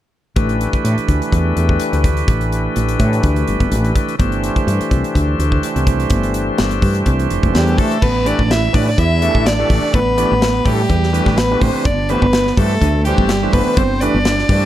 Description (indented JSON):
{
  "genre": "electric jazz fusion",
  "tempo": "125 BPM",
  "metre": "4/4",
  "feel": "swing 53% on 16ths",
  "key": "A minor",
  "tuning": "A4 = 441 Hz",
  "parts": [
    { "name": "bright tonewheel organ", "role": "accompaniment", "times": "0.4-14.7 s", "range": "E3 to D5", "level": "-20 LUFS", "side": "equal", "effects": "slow rotary speaker, overdrive" },
    { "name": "woody fretless electric bass", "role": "bass", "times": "0.4-14.7 s", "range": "F1 to A2", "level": "-17 LUFS", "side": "equal", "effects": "none" },
    { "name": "modern studio drum kit", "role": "drums", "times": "0.4-14.6 s", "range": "crash cymbal, hi-hat, kick drum, snare drum", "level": "-19 LUFS", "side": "equal", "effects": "none" },
    { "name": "rich violin", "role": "melody", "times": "7.5-14.7 s", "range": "G4 to E5", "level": "-19 LUFS", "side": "left 1 dB", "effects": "none" },
    { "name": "breathy tenor saxophone", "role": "second line", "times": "7.6-14.7 s", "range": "G3 to E4", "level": "-21 LUFS", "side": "right 4 dB", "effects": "tape echo" }
  ],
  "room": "little or no reverb",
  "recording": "dark, warm production",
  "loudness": "-13 LUFS",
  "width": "side -12 dB against mid",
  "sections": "0.4-8.0 A section; 8.0-14.7 B section",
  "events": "none",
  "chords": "0.4 A9sus4; 4.2 Gsus4; 8.0 A9sus4; 11.9 Gsus24",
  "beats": "| 0.37 0.85 1.33 1.80 | 2.28 2.76 3.24 3.72 | 4.20 4.68 5.16 5.63 | 6.11 6.59 7.07 7.55 | 8.03 8.51 8.98 9.46 | 9.94 10.42 10.90 11.38 | 11.86 12.34 12.82 13.30 | 13.78 14.26"
}